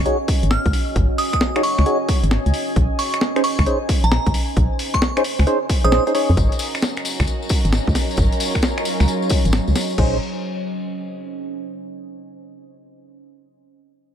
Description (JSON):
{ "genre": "UK garage, two-step garage", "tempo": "133 BPM", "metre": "4/4", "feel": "swing 66% on 16ths", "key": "Bb minor", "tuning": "A4 = 440 Hz", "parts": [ { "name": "organ-like FM bass", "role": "bass", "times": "0.0-10.2 s", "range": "Ab1 to F2", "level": "-18 LUFS", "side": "equal", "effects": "none" }, { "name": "deep dark ambient pad", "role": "texture", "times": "0.0-11.7 s", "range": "Gb3 to Ab5", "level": "-27 LUFS", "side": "right 1 dB", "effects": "chorus, built-in reverb, sidechain pumping" }, { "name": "percussive organ stab", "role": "stabs", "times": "0.1-6.3, 10.0-10.2 s", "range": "Db4 to Db5", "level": "-22 LUFS", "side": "equal", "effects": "analog chorus, ping-pong delay" }, { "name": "breakbeat sampler-style drum kit", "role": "drums", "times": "0.1-10.1 s", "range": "crash cymbal, finger snaps, hi-hat, snare drum", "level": "-24 LUFS", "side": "left 1 dB", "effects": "none" }, { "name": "electronic kick drum", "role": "drums", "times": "0.3-10.1 s", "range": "none", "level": "-20 LUFS", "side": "equal", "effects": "overdrive" }, { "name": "glassy synth bell", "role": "melody", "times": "0.5-6.0 s", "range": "Bb5 to F6", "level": "-25 LUFS", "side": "right 1 dB", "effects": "chorus, ping-pong delay" }, { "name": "warm studio violin section", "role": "sustained chords", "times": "6.4-10.2 s", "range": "Db4 to C5", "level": "-30 LUFS", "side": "right 2 dB", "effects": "sidechain pumping, low-pass filter" }, { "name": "tambourine", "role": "percussion", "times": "6.4-10.0 s", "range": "none", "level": "-30 LUFS", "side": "left 6 dB", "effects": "none" } ], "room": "light reverb", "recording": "none", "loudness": "-16 LUFS", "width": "side -9 dB against mid", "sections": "0.0-6.4 A section; 6.4-10.0 B section; 10.0-11.8 C section", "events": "filter sweep on synth stab 0.0-6.4; filter sweep on FM bass 6.4-10.0; filter sweep on violin section 6.4-10.0", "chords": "0.0 Ab7sus4; 2.8 Bbm11; 6.4 Ab7sus4; 10.0 Bbm11 (rootless)" }